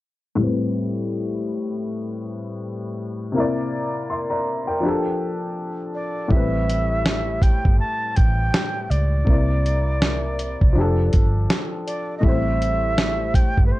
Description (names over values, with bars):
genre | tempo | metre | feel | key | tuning
lo-fi hip hop | 81 BPM | 4/4 | swing 55% on 16ths | A minor | A4 = 440 Hz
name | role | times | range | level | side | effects
dark upright piano | accompaniment | 0.4-13.8 s | A2 to C6 | -24 LUFS | left 2 dB | cassette tape, low-pass filter
breathy bright concert flute | melody | 5.9-13.8 s | B4 to A5 | -26 LUFS | right 2 dB | low-pass filter
vintage muted fingered electric bass | bass | 6.3-13.7 s | F1 to C#2 | -22 LUFS | equal | none
dusty soul sampler-style drum kit | drums | 6.3-13.7 s | hi-hat, kick drum, snare drum | -19 LUFS | equal | vintage 12-bit sampler grit
room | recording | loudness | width
light reverb | cassette tape | -19 LUFS | side -17 dB against mid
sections
0.4-6.3 A section; 6.3-13.8 B section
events
filter sweep on upright piano 0.4-6.3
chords
0.4 Am9; 3.3 C9; 4.8 F69; 6.3 Am9; 9.3 C9; 10.8 F69; 12.2 Am7